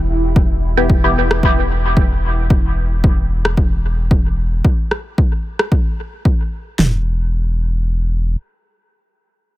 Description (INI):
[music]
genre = dub techno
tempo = 112 BPM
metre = 4/4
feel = swing 54% on 16ths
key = E minor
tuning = A4 = 440 Hz
[part]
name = warm sub bass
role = bass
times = 0.0-8.4 s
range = E1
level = -18 LUFS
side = equal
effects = tube saturation, sidechain pumping
[part]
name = bubbling stepped-filter texture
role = texture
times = 0.0-2.5 s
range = E4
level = -28 LUFS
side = right 4 dB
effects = chorus, built-in reverb, sidechain pumping
[part]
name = deep house drum kit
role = drums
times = 0.4-6.9 s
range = kick drum, snare drum, toms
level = -14 LUFS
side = equal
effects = overdrive
[part]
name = filtered dub chord stab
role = stabs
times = 0.8-1.2 s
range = B3 to G4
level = -20 LUFS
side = left 1 dB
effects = phaser, sidechain pumping, dub echo
[part]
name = electronic rim click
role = drums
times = 1.3-5.7 s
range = none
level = -19 LUFS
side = equal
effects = overdrive, dub echo
[sound]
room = little or no reverb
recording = none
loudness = -14 LUFS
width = side -16 dB against mid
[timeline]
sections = 0.0-6.8 A section; 6.8-9.6 B section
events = none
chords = none